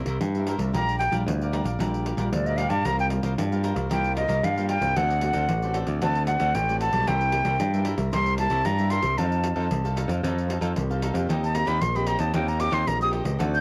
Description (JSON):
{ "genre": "samba and choro", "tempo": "114 BPM", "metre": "4/4", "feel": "straight", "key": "unclear", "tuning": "A4 = 443 Hz", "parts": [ { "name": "cavaquinho", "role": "accompaniment", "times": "0.0-13.6 s", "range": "Eb4 to F5", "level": "-37 LUFS", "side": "equal", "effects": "cassette tape, plate reverb" }, { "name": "nylon-string guitar", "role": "accompaniment", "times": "0.0-13.6 s", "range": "G2 to A4", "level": "-35 LUFS", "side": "equal", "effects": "none" }, { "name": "modern bright picked electric bass", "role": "bass", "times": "0.1-13.6 s", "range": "A1 to G2", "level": "-28 LUFS", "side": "equal", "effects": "none" }, { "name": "pandeiro", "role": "percussion", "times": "0.1-13.6 s", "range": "none", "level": "-35 LUFS", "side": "equal", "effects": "none" }, { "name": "breathy concert flute", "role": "melody", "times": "0.7-13.6 s", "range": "D5 to G6", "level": "-28 LUFS", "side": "equal", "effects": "cassette tape, plate reverb" } ], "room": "moderate studio reverb, RT60 0.6 s", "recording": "home recording on cassette", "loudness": "-25 LUFS", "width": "mono", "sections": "0.0-13.6 A section", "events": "flute solo 0.0-13.6", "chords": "0.0 C7; 0.7 Gm7/Bb; 2.9 C7sus4; 5.0 D7; 7.1 C7; 9.2 F7; 11.3 Eb6" }